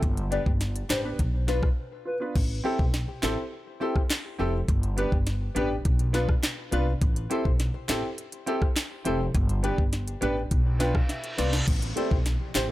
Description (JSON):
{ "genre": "dancehall", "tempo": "103 BPM", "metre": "4/4", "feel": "straight", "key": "A minor", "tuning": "A4 = 440 Hz", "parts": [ { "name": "upright bass", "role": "bass", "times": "0.0-12.7 s", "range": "F1 to C2", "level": "-28 LUFS", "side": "equal", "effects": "none" }, { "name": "afro-pop drum kit", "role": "drums", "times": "0.0-12.7 s", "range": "crash cymbal, handclaps, hi-hat, kick drum, rim click, snare drum", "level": "-26 LUFS", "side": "equal", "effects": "none" }, { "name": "hollow clarinet-like synth lead", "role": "melody", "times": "0.3-2.2, 12.0-12.7 s", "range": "B4 to D5", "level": "-34 LUFS", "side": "left 2 dB", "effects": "chorus, phaser, tape echo" }, { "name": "warm concert grand piano", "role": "accompaniment", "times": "0.3-12.7 s", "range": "A3 to G5", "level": "-31 LUFS", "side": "right 2 dB", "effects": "sidechain pumping" }, { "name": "flamenco guitar", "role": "arpeggios", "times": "0.3-12.7 s", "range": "D4 to C5", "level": "-35 LUFS", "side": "left 7 dB", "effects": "tape echo" }, { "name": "reverse cymbal and downlifter", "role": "sound effects", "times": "10.8-12.7 s", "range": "none", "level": "-36 LUFS", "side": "equal", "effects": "none" } ], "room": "small room reverb", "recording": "none", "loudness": "-24 LUFS", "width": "side -16 dB against mid", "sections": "0.0-2.4 A section; 2.4-11.7 B section; 11.7-12.7 C section", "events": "break 1.8-2.4; grand piano fill 10.5-11.7; reverse cymbal 10.8-11.7; drum fill 11.1-11.7", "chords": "0.0 G; 1.2 Bdim; 2.4 Am7; 4.7 G; 5.8 Bdim; 7.0 Am7; 9.3 G; 10.5 Bdim; 11.7 Am7" }